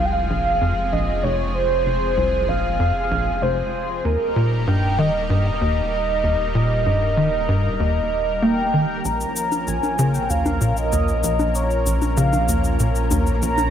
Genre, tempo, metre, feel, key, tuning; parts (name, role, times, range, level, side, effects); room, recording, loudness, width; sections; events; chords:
ambient, sequencer-driven space music; 96 BPM; 4/4; straight; Bb dorian; A4 = 437 Hz
mellow horn-like synth lead; melody; 0.0-13.7 s; Bb4 to Bb5; -22 LUFS; right 1 dB; wide subtle chorus, vintage 12-bit sampler grit, analog delay
lush unison pad; sustained chords; 0.0-13.7 s; C3 to Bb4; -27 LUFS; equal; chorus
tight sequencer bass; riff; 0.0-13.6 s; F1 to Bb3; -22 LUFS; equal; lush chorus, analog delay
warm sub bass; bass; 0.0-13.7 s; Eb1 to Bb1; -26 LUFS; equal
shaker and congas; percussion; 9.1-13.7 s; -27 LUFS; left 3 dB; overdrive, analog delay
moderate plate reverb, RT60 2.8 s; -18 LUFS; side -9 dB against mid
0.0-13.7 A section
fade-in on analog synth pad 0.0-13.7
0.0 Fm; 4.0 Eb; 9.0 Bbm